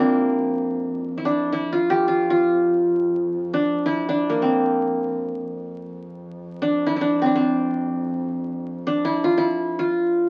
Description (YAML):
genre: Turkish makam ensemble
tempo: free time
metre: none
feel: none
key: unclear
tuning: A4 = 438 Hz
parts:
  - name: qanun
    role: melody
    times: 0.0-10.3 s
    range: Bb3 to G4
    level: -22 LUFS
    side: equal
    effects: none
  - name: muted double bass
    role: drone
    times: 0.0-10.3 s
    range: F2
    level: -38 LUFS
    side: equal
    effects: none
room: moderate studio reverb, RT60 0.6 s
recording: very old 78 rpm record, vinyl crackle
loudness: -22 LUFS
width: mono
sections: 0.0-10.3 A section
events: none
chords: none